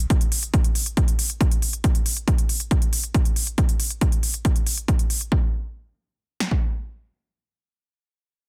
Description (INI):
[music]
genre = uplifting trance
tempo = 138 BPM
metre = 4/4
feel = straight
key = none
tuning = none
[part]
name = electronic hi-hat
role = drums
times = 0.1-5.3 s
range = none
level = -29 LUFS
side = equal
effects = overdrive, sidechain pumping on hats, sidechain pumping on cymbals
[part]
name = punchy analog drum machine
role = drums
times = 0.1-6.6 s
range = kick drum, snare drum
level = -23 LUFS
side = equal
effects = none
[sound]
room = little or no reverb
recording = dense, heavily limited modern master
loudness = -22 LUFS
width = mono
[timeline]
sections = 0.0-5.3 A section; 5.3-8.5 B section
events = none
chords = none